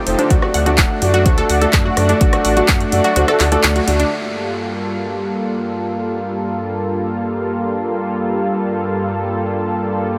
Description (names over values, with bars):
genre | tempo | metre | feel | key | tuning
progressive house | 126 BPM | 4/4 | straight | G minor | A4 = 440 Hz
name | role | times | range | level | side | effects
lush unison pad | sustained chords | 0.0-10.2 s | G2 to A4 | -22 LUFS | equal | chorus, sidechain pumping
felt-muted upright piano | stabs | 0.1-4.0 s | A3 to F#5 | -22 LUFS | equal | sidechain pumping, tape echo
round analog bass | bass | 0.1-4.0 s | D1 to F#2 | -21 LUFS | equal | sidechain pumping
deep house drum kit | drums | 0.1-4.1 s | handclaps, hi-hat, rim click | -24 LUFS | equal | none
unison pluck | arpeggios | 0.2-4.1 s | D4 to F#5 | -23 LUFS | equal | sidechain pumping, tape echo
electronic kick drum | drums | 0.3-2.8 s | none | -18 LUFS | equal | none
room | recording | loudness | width
light reverb, digital ambience | none | -17 LUFS | mono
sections
0.0-4.1 A section; 4.1-10.2 B section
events
kick drops out 3.2-4.1; band accent 3.6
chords
0.3 D; 4.1 Gm7